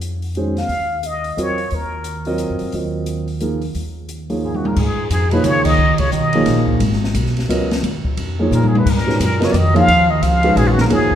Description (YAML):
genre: modal jazz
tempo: 176 BPM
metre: 3/4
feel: swing 62% on 8ths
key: G# dorian from 4.8 s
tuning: A4 = 440 Hz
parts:
  - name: upright bass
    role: bass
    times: 0.0-11.2 s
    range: G#1 to A#2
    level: -20 LUFS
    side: equal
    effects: none
  - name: open jazz drum kit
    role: drums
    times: 0.0-11.2 s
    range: crash cymbal, hi-hat, kick drum, ride cymbal, snare drum, toms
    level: -23 LUFS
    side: left 1 dB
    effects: none
  - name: warm concert grand piano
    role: accompaniment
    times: 0.4-11.2 s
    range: Eb3 to Eb5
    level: -21 LUFS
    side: right 2 dB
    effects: none
  - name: trumpet with plunger mute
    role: melody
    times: 0.6-2.4, 4.5-11.2 s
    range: E#4 to E#5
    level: -19 LUFS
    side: left 2 dB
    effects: none
  - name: warm bass clarinet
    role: second line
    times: 4.4-11.2 s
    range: F#2 to E#3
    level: -22 LUFS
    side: right 3 dB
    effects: none
room: moderate concert hall reverb, RT60 2.3 s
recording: recorded in a church or concert hall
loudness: -15 LUFS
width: side -10 dB against mid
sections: 0.0-4.8 A section; 4.8-11.2 B section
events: drum fill 4.4-4.8, 8.5-8.9; band accent 5.6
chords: 0.0 Bbm9 (rootless); 0.7 Ebmadd9; 4.8 G#13sus4